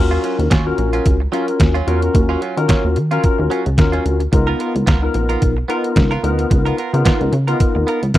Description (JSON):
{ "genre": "early-eighties boogie funk", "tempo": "110 BPM", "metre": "4/4", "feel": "swing 56% on 16ths", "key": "Eb minor", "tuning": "A4 = 438 Hz", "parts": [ { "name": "barky tine electric piano", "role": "accompaniment", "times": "0.0-8.2 s", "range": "Cb4 to Bb4", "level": "-20 LUFS", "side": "left 3 dB", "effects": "overdrive, ensemble chorus" }, { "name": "plucky analog bass", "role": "bass", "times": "0.0-8.1 s", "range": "Bb1 to Eb3", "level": "-18 LUFS", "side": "equal", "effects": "none" }, { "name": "direct-recorded clean electric guitar", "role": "riff", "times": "0.1-8.2 s", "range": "Gb3 to Bb4", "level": "-25 LUFS", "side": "right 5 dB", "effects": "wide subtle chorus" }, { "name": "detuned 8-bit digital drum machine", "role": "drums", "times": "0.2-8.2 s", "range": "hi-hat, kick drum, snare drum", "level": "-16 LUFS", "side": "equal", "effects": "overdrive" } ], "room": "digital ambience", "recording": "dry, close 1970s-style studio recording", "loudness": "-14 LUFS", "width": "side -14 dB against mid", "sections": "0.0-8.2 A section", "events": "none", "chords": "0.0 Ebm9; 4.3 Db13" }